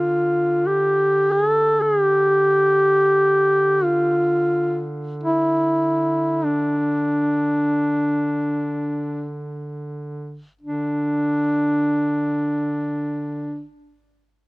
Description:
caucasian folk, Caucasian lament; free time; D minor; A4 = 439 Hz
mellow duduk; melody; 0.0-13.7 s; D4 to A4; -18 LUFS; equal
warm duduk; drone; 0.0-13.7 s; D3; -29 LUFS; right 1 dB
light reverb; recorded outdoors, with no room sound, faint mains hum; -18 LUFS; side -24 dB against mid
0.0-10.6 A section; 10.6-14.5 B section
slowing down 0.0-10.6
free time

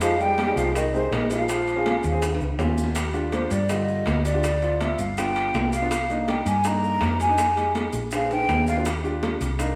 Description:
Afro-Cuban jazz; 163 BPM; 4/4; straight; Eb major; A4 = 440 Hz
breathy mellow jazz flute; melody; 0.0-9.8 s; C5 to Bb5; -28 LUFS; equal
warm trombone; second line; 0.0-2.4 s; C3 to G3; -30 LUFS; equal
warm concert grand piano; accompaniment; 0.0-9.8 s; D3 to Bb4; -31 LUFS; equal
hollow-body short-scale fingered electric bass; bass; 0.0-9.8 s; G1 to G2; -30 LUFS; equal
bongos; percussion; 0.0-9.8 s; -36 LUFS; equal
congas; percussion; 0.0-9.8 s; -34 LUFS; equal
maracas; percussion; 0.0-9.8 s; -43 LUFS; equal
timbales; percussion; 0.0-9.6 s; -36 LUFS; equal
wet stone room reverb, RT60 1.2 s; band playing live in one room; -23 LUFS; mono
0.0-3.0 A section; 3.0-9.8 B section
drum fill 2.2-3.0, 8.1-8.9; flute solo 3.0-9.8
0.0 Fm9; 1.5 Bbm7; 2.2 Eb9; 3.0 Ebmaj7; 4.4 Dm7; 5.2 G7; 5.9 Cm7; 7.4 Fm7; 8.1 Bb7; 8.9 Ebmaj7
| 0.01 0.38 0.75 1.11 | 1.48 1.85 2.22 2.59 | 2.96 3.33 3.70 4.07 | 4.44 4.80 5.17 5.54 | 5.91 6.28 6.65 7.02 | 7.38 7.75 8.12 8.49 | 8.86 9.23 9.59

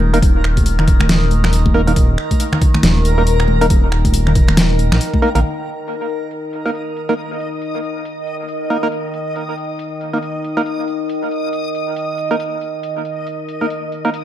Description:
deep dubstep; 138 BPM; 4/4; swing 60% on 16ths, half-time; A4 = 440 Hz
overtone-sweeping drone; sustained chords; 0.0-14.2 s; Eb3; -24 LUFS; equal; chorus, built-in reverb, phaser
dark detuned saw bass; bass; 0.0-5.4 s; Eb1 to Bb1; -15 LUFS; equal
congas; percussion; 0.0-5.4 s; -22 LUFS; equal
backwards swelling texture; texture; 0.0-14.2 s; Bb4 to Eb5; -26 LUFS; left 1 dB; built-in reverb
percussive organ stab; stabs; 0.1-14.1 s; Bb3 to Bb4; -22 LUFS; right 1 dB; analog chorus, dub echo
dubstep drum kit; drums; 0.1-14.2 s; finger snaps, hi-hat, snare drum; -19 LUFS; equal; overdrive, low-pass filter on hats, studio reverb, low-pass filter on snare
electronic kick drum; drums; 0.2-5.2 s; -14 LUFS; equal; overdrive, studio reverb
light reverb; dark, warm production; -15 LUFS; side -12 dB against mid
0.0-5.4 A section; 5.4-14.2 B section
0.0 Eb5
| 0.22 0.66 1.09 1.53 | 1.96 2.40 2.83 3.27 | 3.70 4.14 4.57 5.01 | 5.44 5.88 6.31 6.75 | 7.18 7.62 8.05 8.48 | 8.92 9.36 9.79 10.22 | 10.66 11.09 11.53 11.96 | 12.40 12.83 13.27 13.70 | 14.14

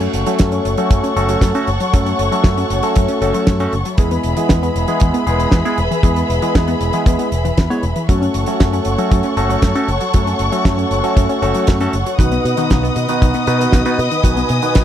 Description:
italo disco; 117 BPM; 4/4; straight; F# dorian; A4 = 442 Hz
dark studio string section; sustained chords; 0.0-14.8 s; G#4 to D#6; -21 LUFS; left 1 dB
wide unison pluck; arpeggios; 0.0-14.8 s; D#3 to C#4; -24 LUFS; left 1 dB; tape echo
barky tine electric piano; stabs; 0.0-14.8 s; B2 to C#5; -19 LUFS; equal; phaser, tape echo
picked electric bass with an envelope filter; bass; 0.0-14.8 s; E1 to B2; -20 LUFS; equal
damped 70s drum kit; drums; 0.0-14.8 s; hi-hat, snare drum; -22 LUFS; right 2 dB; small room reverb
kick drum; drums; 0.4-14.8 s; -14 LUFS; equal; small room reverb
small room ambience; dry, close 1970s-style studio recording; -13 LUFS; side -10 dB against mid
0.0-14.8 A section
0.0 F#m; 4.0 E; 8.1 F#m; 12.2 B
0.40 0.91 1.42 | 1.94 2.45 2.96 3.47 | 3.99 4.50 5.01 5.53 | 6.04 6.55 7.06 7.58 | 8.09 8.60 9.11 9.63 | 10.14 10.65 11.17 11.68 | 12.19 12.70 13.22 13.73 | 14.24 14.76

